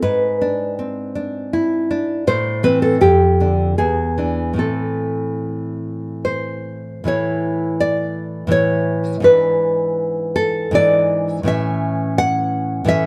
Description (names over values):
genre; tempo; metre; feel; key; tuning
romantic piece for solo classical guitar; 70-86 BPM; 3/4; rubato; A minor, A major from 7.1 s; A4 = 440 Hz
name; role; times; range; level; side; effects
nylon-string guitar; solo; 0.0-13.1 s; E2 to F#5; -18 LUFS; equal; none
room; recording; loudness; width
moderate stone room reverb, RT60 1.2 s; band playing live in one room; -18 LUFS; mono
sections
0.0-7.1 A section; 7.1-13.1 B section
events
none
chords
0.0 E7/G#; 2.3 Am; 3.0 Dm/F; 3.8 E7; 4.6 Am; 7.1 A; 9.3 E7/G#; 11.5 A